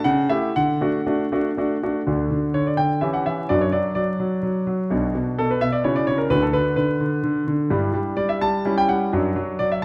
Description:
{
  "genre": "classical-period piano sonatina",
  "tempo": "127 BPM",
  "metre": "3/4",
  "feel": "rubato",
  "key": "D major",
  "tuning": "A4 = 442 Hz",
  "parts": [
    { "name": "bright concert grand piano", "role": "solo", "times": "0.0-9.8 s", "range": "B1 to A5", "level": "-22 LUFS", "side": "equal", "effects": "none" }
  ],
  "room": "wet recital hall reverb, RT60 1.4 s",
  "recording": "dark, warm production, vinyl crackle",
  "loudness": "-22 LUFS",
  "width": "mono",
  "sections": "0.0-2.1 A section; 2.1-9.8 A section",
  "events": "none",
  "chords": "0.0 A7/C#; 0.5 D; 3.0 Em69; 3.5 D/F#; 4.9 Bm; 5.8 F#5/C#; 6.3 Bm/D; 7.7 Em7/G; 8.6 Em69/G; 9.1 D/F#"
}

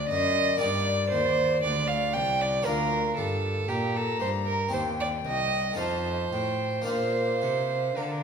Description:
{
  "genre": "classical, baroque-style sonata movement with continuo",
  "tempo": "54-59 BPM",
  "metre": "4/4",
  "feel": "rubato",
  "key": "Bb major",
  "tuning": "A4 = 440 Hz",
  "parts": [
    { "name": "mellow tenor recorder", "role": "melody", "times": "0.0-8.2 s", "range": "D5 to Bb5", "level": "-32 LUFS", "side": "left 8 dB", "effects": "none" },
    { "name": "rich violin", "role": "second line", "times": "0.0-8.2 s", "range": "G4 to G5", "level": "-27 LUFS", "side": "right 4 dB", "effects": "none" },
    { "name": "harpsichord", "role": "accompaniment", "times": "0.0-8.2 s", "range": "C2 to A4", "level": "-33 LUFS", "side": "left 2 dB", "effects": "none" },
    { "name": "rich cello", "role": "bass", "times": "0.0-8.2 s", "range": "C2 to D3", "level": "-32 LUFS", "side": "right 1 dB", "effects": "none" }
  ],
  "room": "wet recital hall reverb, RT60 1.4 s",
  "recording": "minimal, uncompressed stereo recording",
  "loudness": "-24 LUFS",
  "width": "side -6 dB against mid",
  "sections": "0.0-8.2 A section",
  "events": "none",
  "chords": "0.0 D; 0.6 Gm; 2.7 Bb/D; 4.7 Cm/Eb; 5.8 F7; 6.9 Bb"
}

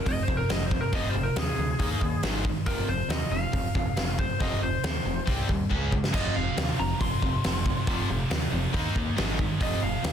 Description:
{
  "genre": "hard rock",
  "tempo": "138 BPM",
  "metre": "4/4",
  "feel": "straight",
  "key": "F minor",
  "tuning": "A4 = 440 Hz",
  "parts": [
    { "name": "lightly driven lead guitar", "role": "melody", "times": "0.0-10.1 s", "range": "Ab4 to C6", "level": "-32 LUFS", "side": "equal", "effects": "slapback echo" },
    { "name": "cranked stack guitar", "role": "riff", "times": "0.0-10.1 s", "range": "F2 to Eb4", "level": "-33 LUFS", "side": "right 8 dB", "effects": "overdrive" },
    { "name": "overdriven electric guitar", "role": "riff", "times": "0.0-10.1 s", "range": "F2 to Eb4", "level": "-34 LUFS", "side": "left 11 dB", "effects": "none" },
    { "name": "growling picked electric bass", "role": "bass", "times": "0.1-10.1 s", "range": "F1 to Eb2", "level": "-32 LUFS", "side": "equal", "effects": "overdrive" },
    { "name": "huge arena drum kit", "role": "drums", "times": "0.1-10.1 s", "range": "crash cymbal, hi-hat, kick drum, snare drum, splash cymbal", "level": "-28 LUFS", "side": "equal", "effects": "none" },
    { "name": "heavy high-gain guitar", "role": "riff", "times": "6.1-10.1 s", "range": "F2 to Eb4", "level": "-36 LUFS", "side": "right 1 dB", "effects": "distortion" }
  ],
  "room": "small room ambience",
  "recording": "dense, heavily limited modern master",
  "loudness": "-24 LUFS",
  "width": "side -8 dB against mid",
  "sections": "0.0-10.1 A section",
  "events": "lead electric guitar solo 0.0-10.1; drum fill 5.7-6.1",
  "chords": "0.0 Fm; 1.8 Eb5; 2.2 Ab5; 2.7 F5; 5.3 C5; 5.7 Db5; 6.1 F5; 8.7 Eb5; 9.2 Ab5; 9.6 F5"
}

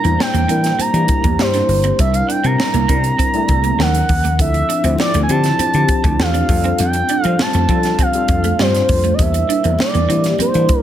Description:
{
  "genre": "polished 1980s jazz-funk pop",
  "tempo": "100 BPM",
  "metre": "4/4",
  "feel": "straight",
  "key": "unclear",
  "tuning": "A4 = 440 Hz",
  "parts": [
    { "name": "expressive synth lead", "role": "melody", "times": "0.0-10.8 s", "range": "C5 to Bb5", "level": "-18 LUFS", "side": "right 2 dB", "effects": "chorus" },
    { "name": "tine electric piano", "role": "accompaniment", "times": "0.0-10.8 s", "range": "F3 to C5", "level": "-20 LUFS", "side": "left 4 dB", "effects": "ensemble chorus" },
    { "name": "clean electric guitar", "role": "riff", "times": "0.0-10.7 s", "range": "G3 to D4", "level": "-25 LUFS", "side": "right 7 dB", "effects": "ensemble chorus" },
    { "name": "vintage slap bass", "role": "bass", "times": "0.0-10.7 s", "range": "G1 to F3", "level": "-18 LUFS", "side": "equal", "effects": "none" },
    { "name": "crisp fusion drum kit", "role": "drums", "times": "0.0-10.8 s", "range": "hi-hat, kick drum, snare drum", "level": "-19 LUFS", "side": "equal", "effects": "gated reverb" },
    { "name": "congas", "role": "percussion", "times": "4.4-10.8 s", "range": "none", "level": "-31 LUFS", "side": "left 3 dB", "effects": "none" }
  ],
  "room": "light reverb",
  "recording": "none",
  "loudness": "-13 LUFS",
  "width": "side -11 dB against mid",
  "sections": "0.0-10.8 A section",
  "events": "none",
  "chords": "0.0 Em7b5; 2.0 C7; 3.8 Ebm9; 4.4 Dm9; 6.5 F69; 9.2 Em7b5"
}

